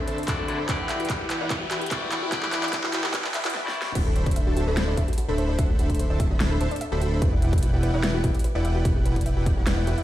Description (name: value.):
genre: future bass.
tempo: 147 BPM.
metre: 4/4.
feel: half-time.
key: unclear.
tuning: A4 = 440 Hz.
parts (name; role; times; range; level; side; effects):
clean electric guitar; accompaniment; 0.0-3.9 s; D3 to D5; -34 LUFS; left 3 dB; sidechain pumping, dub echo.
soft round pluck; arpeggios; 0.0-10.0 s; F#4 to E5; -34 LUFS; left 2 dB; chorus, sidechain pumping, dub echo.
dense compressed supersaw; riff; 0.0-10.0 s; D4 to B5; -30 LUFS; equal; sidechain pumping, low-pass filter, dub echo.
riser and noise sweep; sound effects; 0.0-4.0 s; none; -35 LUFS; left 1 dB; none.
big-room dance drum kit; drums; 0.1-10.0 s; crash cymbal, handclaps, hi-hat, snare drum; -30 LUFS; equal; overdrive, small room ambience.
electronic kick drum; drums; 0.3-9.5 s; none; -25 LUFS; equal; overdrive, small room ambience.
fat analog bass; bass; 4.0-9.9 s; D1 to E1; -24 LUFS; equal; sidechain pumping.
room: light reverb.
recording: played on a big sound system in a bare room, large studio reverb, high-pass filter.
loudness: -22 LUFS.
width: side -13 dB against mid.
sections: 0.0-4.0 A section; 4.0-10.0 B section.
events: build-up 0.0-4.0; drum fill 0.0-3.5, 3.5-4.0; riser 0.0-3.5; filter sweep on synth arpeggio sound 0.0-4.0; filter sweep 0.0-4.0; noise sweep 2.3-4.0; drop 4.0-10.0.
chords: 0.0 D9; 0.7 Em9; 4.0 D9; 7.2 Em9.